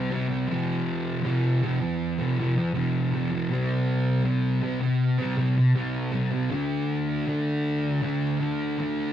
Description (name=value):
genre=rock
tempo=79 BPM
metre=4/4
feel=straight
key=unclear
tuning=A4 = 443 Hz
part: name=fuzz guitar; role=solo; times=0.0-9.1 s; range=F2 to D4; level=-23 LUFS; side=equal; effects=distortion
room=wet booth ambience, RT60 0.2 s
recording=rough rehearsal-room recording, tube saturation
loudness=-23 LUFS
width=side -10 dB against mid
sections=0.0-6.5 A section; 6.5-9.1 B section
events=none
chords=0.5 F5; 3.5 C5; 6.5 D5